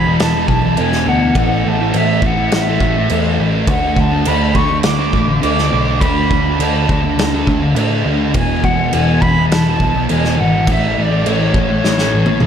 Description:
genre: rock, shoegaze and dream pop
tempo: 103 BPM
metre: 4/4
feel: straight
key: D lydian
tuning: A4 = 440 Hz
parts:
  - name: breathy silver concert flute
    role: melody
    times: 0.0-12.5 s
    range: E4 to D6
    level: -19 LUFS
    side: equal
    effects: diffuse ambient delay
  - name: fuzz guitar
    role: riff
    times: 0.0-12.5 s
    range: E2 to D4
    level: -17 LUFS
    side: left 1 dB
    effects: distortion, wide subtle chorus
  - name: vintage muted picked electric bass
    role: bass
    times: 0.0-12.5 s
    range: E1 to A2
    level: -18 LUFS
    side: equal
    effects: none
  - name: loose indie drum kit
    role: drums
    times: 0.2-12.5 s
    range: crash cymbal, kick drum, snare drum, toms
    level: -18 LUFS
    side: right 1 dB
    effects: none
room: moderate plate reverb, RT60 2.2 s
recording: dreamy mix soaked in reverb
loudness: -12 LUFS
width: side -8 dB against mid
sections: 0.0-12.5 A section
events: drum fill 11.8-12.5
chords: 0.0 E5; 1.4 A5; 3.7 D5; 8.3 E; 10.7 A

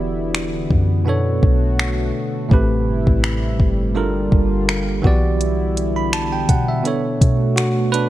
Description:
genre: contemporary R&B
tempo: 83 BPM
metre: 4/4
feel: swing 54% on 16ths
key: unclear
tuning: A4 = 440 Hz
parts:
  - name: bell-like tine electric piano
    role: accompaniment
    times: 0.0-8.1 s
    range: A2 to B5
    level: -21 LUFS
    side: right 3 dB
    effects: slow stereo tremolo
  - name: warm analog pad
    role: sustained chords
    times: 0.0-8.1 s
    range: C3 to F#4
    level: -26 LUFS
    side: left 2 dB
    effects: chorus
  - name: soft 808-style bass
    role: bass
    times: 0.0-8.1 s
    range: E1 to B2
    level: -21 LUFS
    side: equal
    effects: none
  - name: smooth R&B drum kit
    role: drums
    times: 0.3-8.1 s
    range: finger snaps, hi-hat, kick drum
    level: -18 LUFS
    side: equal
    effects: vintage 12-bit sampler grit
room: little or no reverb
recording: none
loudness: -16 LUFS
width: side -14 dB against mid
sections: 0.0-8.1 A section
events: none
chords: 0.0 Em7; 1.1 Bm7; 2.5 Am7; 4.0 Gm7; 5.0 Em7; 6.8 Bm7

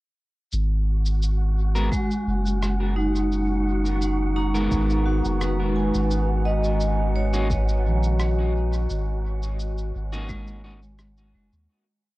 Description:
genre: ambient dub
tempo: 86 BPM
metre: 4/4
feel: straight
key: G# minor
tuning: A4 = 441 Hz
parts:
  - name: warbly tape-like pad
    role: sustained chords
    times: 2.3-11.7 s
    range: D#3 to A#5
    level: -32 LUFS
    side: equal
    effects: chorus, built-in reverb, cassette tape
  - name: warm sub bass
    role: bass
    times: 0.5-11.7 s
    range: F#1 to D#2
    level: -23 LUFS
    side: equal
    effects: none
  - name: electronic cabasa and rim click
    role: drums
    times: 0.5-11.7 s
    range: none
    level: -37 LUFS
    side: equal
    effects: cassette tape, dub echo
  - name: wind-like tuned noise texture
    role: texture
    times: 1.0-11.7 s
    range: F#4 to F#5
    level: -35 LUFS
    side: left 1 dB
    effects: built-in reverb, cassette tape, plate reverb
  - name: electric guitar at the edge of break-up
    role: stabs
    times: 1.7-10.8 s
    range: G#3 to A#4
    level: -32 LUFS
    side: left 1 dB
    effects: cassette tape, dub echo
  - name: vibraphone with hard mallets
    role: arpeggios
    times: 1.9-11.7 s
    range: G#3 to A#5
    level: -27 LUFS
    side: right 1 dB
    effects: low-pass filter, cassette tape, dub echo
  - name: electronic kick drum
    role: drums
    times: 1.9-10.4 s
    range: none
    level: -29 LUFS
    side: equal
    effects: cassette tape
room: light reverb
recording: home recording on cassette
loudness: -21 LUFS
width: side -19 dB against mid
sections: 0.5-11.7 groove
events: fade-in on ambient pad 0.5-11.7; filter sweep on vibraphone 0.5-11.7; fade-out 8.0-11.7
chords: 0.5 G#m9

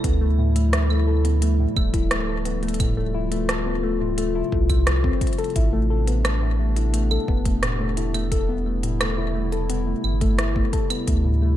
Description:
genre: IDM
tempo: 87 BPM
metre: 4/4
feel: straight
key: A minor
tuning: A4 = 441 Hz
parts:
  - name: warbly tape-like pad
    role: sustained chords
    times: 0.0-11.6 s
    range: C3 to F4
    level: -29 LUFS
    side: left 1 dB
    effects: chorus, built-in reverb, vintage 12-bit sampler grit
  - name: harp-like synth pluck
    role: arpeggios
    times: 0.0-11.6 s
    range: A2 to A4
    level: -26 LUFS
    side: left 3 dB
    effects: chorus, ping-pong delay
  - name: warm sub bass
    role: bass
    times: 0.0-11.6 s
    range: D1 to D2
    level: -22 LUFS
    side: equal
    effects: none
  - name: electronic kick drum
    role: drums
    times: 0.0-11.2 s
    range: none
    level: -23 LUFS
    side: equal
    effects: none
  - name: organic electronic drum kit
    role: drums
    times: 0.0-11.2 s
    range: claves, hi-hat, rim click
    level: -28 LUFS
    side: right 1 dB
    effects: ping-pong delay
room: little or no reverb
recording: none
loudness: -19 LUFS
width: side -12 dB against mid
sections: 0.0-11.6 A section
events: none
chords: 0.0 Dm11; 5.6 Am11

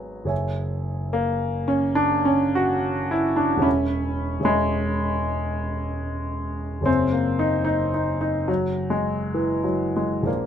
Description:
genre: classical, impressionist solo piano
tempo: 72 BPM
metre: 4/4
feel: uneven beats, rubato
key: E major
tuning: A4 = 440 Hz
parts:
  - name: warm grand piano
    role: solo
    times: 0.0-10.5 s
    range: E1 to B5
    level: -21 LUFS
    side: equal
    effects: none
room: light reverb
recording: minimal, uncompressed stereo recording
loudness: -21 LUFS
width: side -9 dB against mid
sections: 0.0-10.5 A section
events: none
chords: 0.3 F#sus2; 3.7 E6; 6.9 Gbsus2

